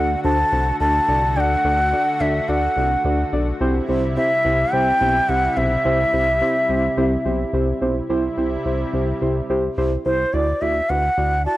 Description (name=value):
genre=synth-pop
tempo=107 BPM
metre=4/4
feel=straight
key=unclear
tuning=A4 = 440 Hz
part: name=bansuri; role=melody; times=0.0-11.6 s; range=C5 to A5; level=-19 LUFS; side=equal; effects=none
part: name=muted felt-like synth keys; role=accompaniment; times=0.0-11.6 s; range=C4 to D5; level=-23 LUFS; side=equal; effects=chorus
part: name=lush unison pad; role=sustained chords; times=0.0-10.3 s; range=C3 to F#4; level=-28 LUFS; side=equal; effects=chorus
part: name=chorused synth bass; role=bass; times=0.0-11.5 s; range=B1 to D2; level=-23 LUFS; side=equal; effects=none
room=little or no reverb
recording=dry, gritty hardware recording, transformer saturation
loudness=-17 LUFS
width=side -16 dB against mid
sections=0.0-8.1 A section; 8.1-10.3 B section; 10.3-11.6 C section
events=none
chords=0.0 D; 3.6 C; 10.3 Dadd9